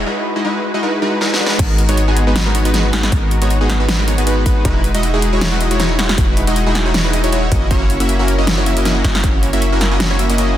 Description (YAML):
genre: future bass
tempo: 157 BPM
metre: 4/4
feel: swing 54% on 16ths, half-time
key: G# minor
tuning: A4 = 440 Hz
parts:
  - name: supersaw stab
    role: riff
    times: 0.0-10.6 s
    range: G#3 to E5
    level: -17 LUFS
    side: equal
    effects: cassette tape, sidechain pumping, tape echo
  - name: warm 808-style bass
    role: bass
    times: 0.0-10.6 s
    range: E1 to G#1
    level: -17 LUFS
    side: equal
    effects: sidechain pumping
  - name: big-room dance drum kit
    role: drums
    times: 1.2-10.5 s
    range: crash cymbal, hi-hat, snare drum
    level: -20 LUFS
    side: equal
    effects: high-pass filter on hats, high-pass filter on snare, high-pass filter on cymbals, high-pass filter on room
  - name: electronic kick drum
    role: drums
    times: 1.6-9.3 s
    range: none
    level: -16 LUFS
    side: equal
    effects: none
room: light reverb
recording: dense, heavily limited modern master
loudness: -13 LUFS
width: side -12 dB against mid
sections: 0.0-1.6 A section; 1.6-10.6 B section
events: build-up 0.0-1.6; break 0.1-1.6; drum fill 1.2-1.6; drop 1.6-10.6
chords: 0.0 Emaj9; 1.4 G#m7; 1.6 G#m9; 4.7 Emaj9; 7.5 F#7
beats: | 0.06 0.45 0.83 1.21 | 1.59 1.98 2.36 2.74 | 3.12 3.50 3.89 4.27 | 4.65 5.03 5.41 5.80 | 6.18 6.56 6.94 7.33 | 7.71 8.09 8.47 8.85 | 9.24 9.62 10.00 10.38